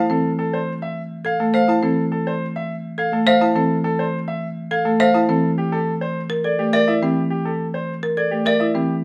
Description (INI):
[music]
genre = classical, minimalist pattern music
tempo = 104 BPM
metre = 3/4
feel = straight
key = unclear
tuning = A4 = 443 Hz
[part]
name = bright grand piano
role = melody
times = 0.0-8.9 s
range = G4 to A5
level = -24 LUFS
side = equal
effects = none
[part]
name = folk marimba with hard mallets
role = arpeggios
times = 0.0-8.9 s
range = C4 to C5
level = -24 LUFS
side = equal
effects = none
[part]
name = marimba with soft mallets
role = accompaniment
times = 0.1-8.9 s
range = E3 to A3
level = -25 LUFS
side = equal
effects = none
[part]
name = trough xylophone with plastic mallets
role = arpeggios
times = 3.3-8.7 s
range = E5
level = -28 LUFS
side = equal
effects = none
[sound]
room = moderate large studio reverb, RT60 0.9 s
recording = none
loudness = -20 LUFS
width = mono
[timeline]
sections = 0.0-9.0 A section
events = none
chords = 0.0 Fmaj7/E; 5.4 C9